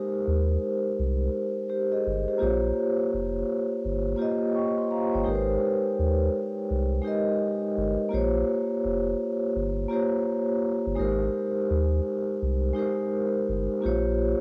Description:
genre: hip hop.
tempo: 84 BPM.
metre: 4/4.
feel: swing 64% on 16ths.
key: unclear.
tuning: A4 = 440 Hz.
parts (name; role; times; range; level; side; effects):
vibraphone with soft mallets; accompaniment; 0.0-14.4 s; Ab3 to Db6; -28 LUFS; equal; cassette tape.
warm sub bass; bass; 0.3-14.3 s; F1 to Eb2; -30 LUFS; equal; none.
room: moderate spring reverb, RT60 2.3 s.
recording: home recording on cassette.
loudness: -27 LUFS.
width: mono.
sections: 0.0-13.8 A section.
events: none.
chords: 0.0 Abmaj7; 2.4 Bbm69; 5.3 Abmaj7; 8.1 Bbm69; 11.0 Abmaj7; 13.8 Bbm69.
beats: 0.26 0.98 1.69 | 2.41 3.12 3.83 4.55 | 5.26 5.98 6.69 7.41 | 8.12 8.84 9.55 10.26 | 10.98 11.69 12.41 13.12 | 13.84.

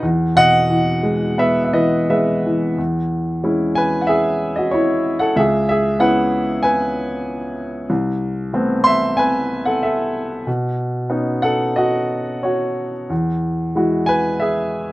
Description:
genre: classical, lyrical solo piano.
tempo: 82-98 BPM.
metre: 4/4.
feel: rubato.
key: E major.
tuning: A4 = 440 Hz.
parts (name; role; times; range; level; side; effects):
warm baby grand piano; solo; 0.0-14.9 s; C2 to C6; -16 LUFS; equal; none.
room: little or no reverb.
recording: close, detailed microphones.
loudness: -16 LUFS.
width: side -18 dB against mid.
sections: 0.0-2.8 A section; 2.8-14.9 B section.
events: none.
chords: 0.0 E; 2.8 E6; 5.4 C#m7; 7.9 Amadd9/C; 10.5 Badd9; 13.1 Eadd9.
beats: | 0.03 0.70 1.38 2.10 | 2.79 3.44 4.09 4.73 | 5.37 6.01 6.63 7.26 | 7.90 8.54 9.18 9.82 | 10.47 11.11 11.76 12.44 | 13.11 13.77 14.42.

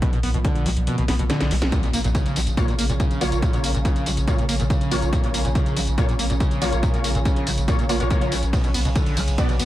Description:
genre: driving peak-time techno.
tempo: 141 BPM.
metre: 4/4.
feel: straight.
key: Bb minor.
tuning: A4 = 439 Hz.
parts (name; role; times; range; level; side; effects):
screaming distorted acid line; riff; 0.0-9.7 s; Bb2 to B3; -26 LUFS; equal; distortion, lush chorus, sidechain pumping, tape echo.
analog drone; drone; 0.0-9.7 s; Bb2 to F3; -31 LUFS; equal; chorus, sidechain pumping.
electronic kick drum; drums; 0.0-9.5 s; none; -22 LUFS; equal; none.
techno drum kit; drums; 0.0-9.7 s; hi-hat, ride cymbal, snare drum, tambourine; -29 LUFS; equal; sidechain pumping on hats, sidechain pumping on perc, sidechain pumping on cymbals, tape echo.
saturated sub bass; bass; 0.1-9.7 s; Bb1 to B1; -25 LUFS; equal; overdrive, sidechain pumping, low-pass filter.
impact; sound effects; 1.7-3.4 s; none; -32 LUFS; equal; none.
rave stab; stabs; 2.6-9.5 s; Bb3 to D5; -28 LUFS; equal; chorus, built-in reverb, sidechain pumping, tape echo.
room: light reverb, digital ambience.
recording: echo-heavy mix.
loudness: -19 LUFS.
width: side -14 dB against mid.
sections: 0.0-1.7 A section; 1.7-9.7 B section.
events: kick drops out 0.9-1.7; drum fill 1.1-1.7; band accent 1.6; drop 1.7-9.7; impact 1.7-3.4.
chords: 0.0 Bm; 1.7 Bbm; 8.5 Bm.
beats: | 0.02 0.45 0.87 1.30 | 1.72 2.15 2.57 3.00 | 3.42 3.85 4.28 4.70 | 5.13 5.55 5.98 6.40 | 6.83 7.25 7.68 8.11 | 8.53 8.96 9.38.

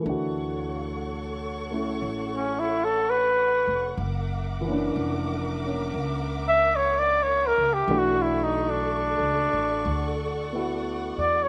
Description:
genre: jazz ballad.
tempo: 61 BPM.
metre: 4/4.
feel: swing 69% on 8ths.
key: D major.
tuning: A4 = 442 Hz.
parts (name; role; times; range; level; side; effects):
warm grand piano; accompaniment; 0.0-11.5 s; E3 to Bb4; -33 LUFS; equal; slapback echo.
warm symphonic string section; sustained chords; 0.1-11.5 s; A4 to D6; -36 LUFS; equal; none.
upright bass; bass; 0.1-11.5 s; F1 to E2; -35 LUFS; equal; none.
clear flugelhorn; melody; 2.4-11.5 s; C#4 to E5; -24 LUFS; equal; slapback echo.
room: little or no reverb.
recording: recorded outdoors, with no room sound.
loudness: -26 LUFS.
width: mono.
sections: 0.0-11.5 A section.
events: flugelhorn solo 0.0-11.5.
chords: 0.0 Dmaj7; 4.0 F#7b13; 7.9 Bm11.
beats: | 0.04 1.04 2.03 3.01 | 3.99 4.96 5.95 6.92 | 7.90 8.88 9.87 10.86.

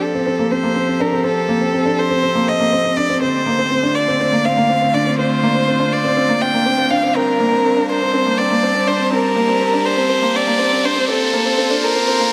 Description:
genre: piano and strings electronica.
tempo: 122 BPM.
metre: 4/4.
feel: straight.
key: G minor.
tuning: A4 = 439 Hz.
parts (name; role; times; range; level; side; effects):
warm violin; melody; 0.0-12.3 s; A4 to G5; -20 LUFS; equal; digital delay.
rich string quartet; sustained chords; 0.0-12.3 s; D3 to A5; -25 LUFS; equal; none.
felt-muted upright piano; riff; 0.0-12.3 s; Bb3 to D4; -22 LUFS; equal; digital delay.
riser; sound effects; 3.4-12.3 s; none; -30 LUFS; equal; none.
room: wet huge ambient reverb, RT60 4.5 s.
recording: high-pass filter.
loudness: -16 LUFS.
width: mono.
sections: 0.0-12.3 A section.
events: build-up 0.0-12.3; filter sweep 0.0-12.3; riser 3.4-12.3.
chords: 0.0 Fadd9; 3.2 Dm7; 7.2 Gm; 11.1 Bb.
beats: 0.27 0.76 | 1.25 1.75 2.24 2.73 | 3.22 3.71 4.20 4.70 | 5.19 5.68 6.17 6.66 | 7.16 7.65 8.14 8.63 | 9.12 9.61 10.11 10.60 | 11.09 11.58 12.07.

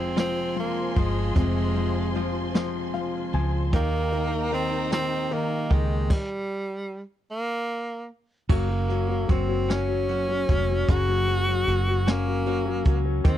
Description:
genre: six-eight pop ballad.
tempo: 50 BPM (dotted quarters).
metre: 6/8.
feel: straight.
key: unclear.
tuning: A4 = 440 Hz.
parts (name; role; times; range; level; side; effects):
breathy tenor saxophone; melody; 0.0-13.4 s; G3 to Gb4; -28 LUFS; right 2 dB; none.
clear concert grand piano; accompaniment; 0.0-13.4 s; C3 to Ab5; -29 LUFS; left 8 dB; none.
warm symphonic string section; sustained chords; 0.0-6.1 s; Eb4 to C6; -34 LUFS; equal; none.
direct-recorded clean electric guitar; arpeggios; 0.0-13.4 s; F2 to G4; -34 LUFS; right 18 dB; none.
vintage muted fingered electric bass; bass; 0.0-13.4 s; F1 to Eb2; -27 LUFS; equal; none.
jazz brush drum kit; drums; 0.2-13.4 s; crash cymbal, hi-hat, kick drum, snare drum; -22 LUFS; equal; none.
room: little or no reverb.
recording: dry, close 1970s-style studio recording.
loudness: -23 LUFS.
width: side -12 dB against mid.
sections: 0.0-8.5 A section; 8.5-13.4 B section.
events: grand piano fill 2.5-3.7; stop 6.1-8.5.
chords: 0.0 Fm; 3.7 Eb; 8.5 Gb.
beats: 0.17 | 1.36 2.55 | 3.73 4.91 | 6.10 7.30 | 8.49 9.69 | 10.89 12.07 | 13.25.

